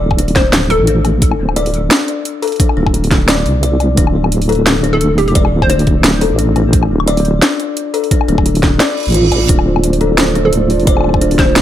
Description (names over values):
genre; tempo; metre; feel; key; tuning
half-time drum and bass; 174 BPM; 4/4; swing 56% on 16ths, half-time; D minor; A4 = 442 Hz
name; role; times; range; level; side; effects
deep soft wobble bass; bass; 0.0-11.6 s; D1 to C2; -14 LUFS; right 1 dB; chorus
drum and bass drum kit; drums; 0.1-11.6 s; hi-hat, snare drum, woodblock; -16 LUFS; left 1 dB; overdrive
electronic kick drum; drums; 0.1-11.5 s; none; -14 LUFS; right 1 dB; overdrive
kalimba; arpeggios; 0.2-11.4 s; D4 to D5; -18 LUFS; left 4 dB; dub echo
hollow square pluck; melody; 0.4-1.0, 4.9-5.8, 10.5-11.6 s; G4 to C5; -20 LUFS; right 1 dB; chorus, dub echo
reverse cymbal; sound effects; 8.9-9.5 s; none; -21 LUFS; right 7 dB; none
dark analog pad; sustained chords; 10.0-11.6 s; A3 to D5; -19 LUFS; right 1 dB; chorus, vintage 12-bit sampler grit, sidechain pumping
pulsing gated texture; texture; 9.5-11.6 s; C5; -21 LUFS; right 4 dB; chorus, built-in reverb
room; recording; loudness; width
digital ambience; none; -10 LUFS; side -11 dB against mid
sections
0.0-11.6 A section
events
reverse cymbal 8.9-9.5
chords
0.0 Dm